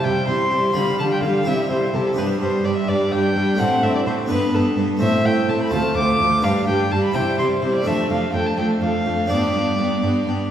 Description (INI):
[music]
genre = classical, baroque-style concerto movement with solo episodes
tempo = 84 BPM (dotted quarters)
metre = 6/8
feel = straight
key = unclear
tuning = A4 = 440 Hz
[part]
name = dark violin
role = melody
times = 0.0-10.5 s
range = A4 to D6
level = -22 LUFS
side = equal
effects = none
[part]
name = warm chamber violin section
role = melody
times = 0.0-10.5 s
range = G4 to C5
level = -33 LUFS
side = left 2 dB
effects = none
[part]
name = rich chamber violin section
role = second line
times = 0.0-10.5 s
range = C4 to F4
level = -31 LUFS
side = left 2 dB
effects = none
[part]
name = dark chamber viola section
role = accompaniment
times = 0.0-10.5 s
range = G3 to C4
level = -22 LUFS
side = equal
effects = none
[part]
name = harpsichord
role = accompaniment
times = 0.0-10.5 s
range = D2 to C5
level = -24 LUFS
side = right 1 dB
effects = none
[part]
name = rich chamber cello section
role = bass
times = 0.0-10.3 s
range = D2 to D3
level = -26 LUFS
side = right 2 dB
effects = none
[sound]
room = wet concert hall reverb, RT60 2.2 s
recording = heard from further back in the room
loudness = -17 LUFS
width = side -10 dB against mid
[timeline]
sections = 0.0-10.5 A section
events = none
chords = 0.0 C; 0.8 G5/D; 1.5 C; 2.2 G; 3.6 D5/A; 4.3 G; 5.0 Am; 5.7 Dm7; 6.4 G; 7.2 C; 7.9 Dm/F; 9.3 G